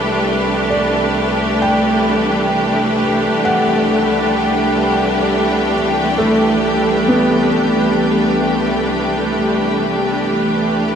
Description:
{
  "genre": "ambient",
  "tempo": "66 BPM",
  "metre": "4/4",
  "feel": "straight",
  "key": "C lydian",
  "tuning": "A4 = 440 Hz",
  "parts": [
    { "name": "bright studio string section", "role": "sustained chords", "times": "0.0-11.0 s", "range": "C2 to B4", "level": "-15 LUFS", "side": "equal", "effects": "none" },
    { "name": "felt-muted upright piano", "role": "arpeggios", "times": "0.7-11.0 s", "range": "A3 to G5", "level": "-20 LUFS", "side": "equal", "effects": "tape echo" },
    { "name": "dark studio violin section", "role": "texture", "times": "1.2-11.0 s", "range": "G4 to G5", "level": "-22 LUFS", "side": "equal", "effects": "none" }
  ],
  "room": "wet huge ambient reverb, RT60 7.9 s",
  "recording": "none",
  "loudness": "-13 LUFS",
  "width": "side -7 dB against mid",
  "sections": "0.0-11.0 A section",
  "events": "none",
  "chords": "0.0 Cmaj9",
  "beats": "0.26 | 1.17 2.08 2.99 3.90 | 4.81 5.71 6.62 7.52 | 8.41 9.31 10.21"
}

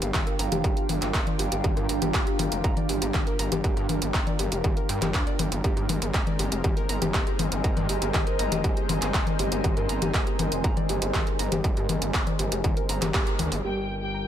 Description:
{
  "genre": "melodic techno",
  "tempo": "120 BPM",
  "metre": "4/4",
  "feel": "straight",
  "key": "G phrygian",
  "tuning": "A4 = 440 Hz",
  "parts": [
    { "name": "lush unison pad", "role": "sustained chords", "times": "0.0-14.3 s", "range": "Ab3 to C5", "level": "-35 LUFS", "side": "equal", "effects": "chorus, phaser, sidechain pumping" },
    { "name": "soft round pluck", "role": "arpeggios", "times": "0.0-14.2 s", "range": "D4 to Bb5", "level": "-34 LUFS", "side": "equal", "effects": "chorus, cassette tape, sidechain pumping, ping-pong delay" },
    { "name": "gritty driven synth bass", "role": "bass", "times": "0.0-14.3 s", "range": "F1 to G2", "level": "-30 LUFS", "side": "equal", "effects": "distortion, sidechain pumping" },
    { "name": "techno drum kit", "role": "drums", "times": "0.0-13.7 s", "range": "congas, crash cymbal, handclaps, hi-hat", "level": "-29 LUFS", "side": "left 2 dB", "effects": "overdrive, sidechain pumping on perc, low-pass filter on perc, sidechain pumping on hats, low-pass filter on hats, low-pass filter on snare, sidechain pumping on cymbals, low-pass filter on cymbals" },
    { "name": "warbly tape-like pad", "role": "texture", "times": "0.0-14.3 s", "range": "C4 to Ab5", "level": "-33 LUFS", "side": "right 2 dB", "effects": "chorus, built-in reverb, phaser, sidechain pumping" },
    { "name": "electronic kick drum", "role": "drums", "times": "0.1-13.2 s", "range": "none", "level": "-27 LUFS", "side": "equal", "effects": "distortion, overdrive" },
    { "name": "fat analog lead", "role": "melody", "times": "13.6-14.3 s", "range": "G4", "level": "-33 LUFS", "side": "right 1 dB", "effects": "analog chorus, sidechain pumping" },
    { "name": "rich studio violin section", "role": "second line", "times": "13.6-14.3 s", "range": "G5", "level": "-33 LUFS", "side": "left 3 dB", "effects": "sidechain pumping, low-pass filter" }
  ],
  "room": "light reverb, digital ambience",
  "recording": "none",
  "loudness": "-23 LUFS",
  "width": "side -10 dB against mid",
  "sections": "0.0-13.6 A section",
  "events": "band accent 13.1",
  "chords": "0.0 Gm7; 5.6 Abadd9; 13.6 Gm7",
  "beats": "0.14 0.64 1.14 | 1.64 2.14 2.64 3.14 | 3.64 4.14 4.64 5.14 | 5.64 6.14 6.64 7.14 | 7.64 8.14 8.64 9.14 | 9.64 10.14 10.64 11.14 | 11.64 12.14 12.64 13.14 | 13.64 14.14"
}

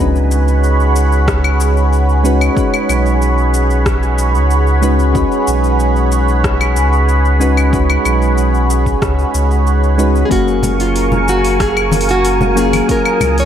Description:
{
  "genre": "sunset chillout",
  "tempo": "93 BPM",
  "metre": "4/4",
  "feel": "straight",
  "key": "unclear",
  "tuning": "A4 = 440 Hz",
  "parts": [
    { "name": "soft electric-piano-like synth keys", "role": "accompaniment", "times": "0.0-13.5 s", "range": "F#3 to E#5", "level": "-17 LUFS", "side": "moving between left 2 dB and right 5 dB", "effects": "chorus, auto-pan, vintage 12-bit sampler grit, ping-pong delay" },
    { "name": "lush unison pad", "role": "sustained chords", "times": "0.0-13.5 s", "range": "G#4 to D#6", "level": "-18 LUFS", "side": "right 1 dB", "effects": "chorus, phaser" },
    { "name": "warm sub bass", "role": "bass", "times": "0.0-13.5 s", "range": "F#1 to C#2", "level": "-14 LUFS", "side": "equal", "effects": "none" },
    { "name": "deep house drum kit", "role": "drums", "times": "0.2-13.5 s", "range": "claves, hi-hat, rim click, shaker", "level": "-22 LUFS", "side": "left 3 dB", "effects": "overdrive" },
    { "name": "electronic kick drum", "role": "drums", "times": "1.3-13.0 s", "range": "none", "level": "-19 LUFS", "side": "equal", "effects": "overdrive" },
    { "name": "nylon-string guitar", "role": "melody", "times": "10.3-13.5 s", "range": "E#4 to C#5", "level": "-16 LUFS", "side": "equal", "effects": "analog delay" },
    { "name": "wind-like tuned noise texture", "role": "texture", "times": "10.6-13.5 s", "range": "G#5", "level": "-26 LUFS", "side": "equal", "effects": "built-in reverb, ensemble chorus" },
    { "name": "congas", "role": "percussion", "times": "10.6-13.3 s", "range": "none", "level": "-22 LUFS", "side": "left 3 dB", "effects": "none" }
  ],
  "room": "moderate plate reverb, RT60 2.5 s",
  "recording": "dreamy mix soaked in reverb",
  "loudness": "-11 LUFS",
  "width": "side -9 dB against mid",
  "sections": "0.0-13.5 A section",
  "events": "none",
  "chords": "0.0 C#7sus4; 10.3 F#maj7",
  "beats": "0.63 1.28 1.93 | 2.57 3.21 3.86 4.50 | 5.15 5.80 6.44 7.09 | 7.73 8.38 9.02 9.67 | 10.31 10.96 11.60 12.25 | 12.89"
}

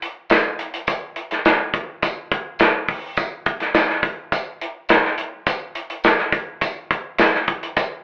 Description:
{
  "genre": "soul",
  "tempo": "105 BPM",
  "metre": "4/4",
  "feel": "straight",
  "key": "none",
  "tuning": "none",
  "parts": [
    { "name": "natural country drum kit", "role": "drums", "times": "0.0-7.9 s", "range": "hi-hat, kick drum, snare drum", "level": "-18 LUFS", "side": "equal", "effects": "none" },
    { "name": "tambourine", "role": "percussion", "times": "0.3-7.9 s", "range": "none", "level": "-33 LUFS", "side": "equal", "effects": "none" }
  ],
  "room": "moderate studio reverb, RT60 0.5 s",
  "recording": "band playing live in one room, telephone sound",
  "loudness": "-18 LUFS",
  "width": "side -29 dB against mid",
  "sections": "0.0-8.0 A section",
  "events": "none",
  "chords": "none",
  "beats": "0.30 | 0.88 1.45 2.02 2.60 | 3.17 3.75 4.32 4.89 | 5.47 6.04 6.62 7.19 | 7.76"
}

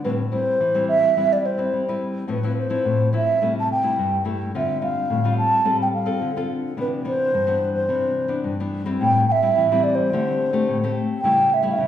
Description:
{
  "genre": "samba",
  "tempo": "107 BPM",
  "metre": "4/4",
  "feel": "straight",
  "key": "C major",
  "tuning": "A4 = 440 Hz",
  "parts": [
    { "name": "mellow hollow wooden flute", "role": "melody", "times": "0.0-11.9 s", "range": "B4 to A5", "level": "-20 LUFS", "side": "right 1 dB", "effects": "none" },
    { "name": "nylon-string guitar", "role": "accompaniment", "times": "0.0-11.9 s", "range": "G2 to B4", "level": "-23 LUFS", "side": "left 2 dB", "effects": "none" }
  ],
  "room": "wet recital hall reverb, RT60 1.6 s",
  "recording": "recorded in a church or concert hall",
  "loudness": "-19 LUFS",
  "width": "side -10 dB against mid",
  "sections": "0.0-9.0 A section; 9.0-11.9 B section",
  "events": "none",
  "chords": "0.0 Am7; 1.2 Cmaj7/G; 2.3 Fmaj7/A; 3.4 C6; 4.5 Dm7; 5.7 G9sus4; 6.8 Cmaj9; 9.0 Am7; 10.1 D7sus4; 11.2 A7/C#",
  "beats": "| 0.05 0.61 1.17 1.73 | 2.29 2.86 3.42 3.98 | 4.54 5.10 5.66 6.22 | 6.78 7.34 7.89 8.45 | 9.01 9.57 10.12 10.68 | 11.24 11.79"
}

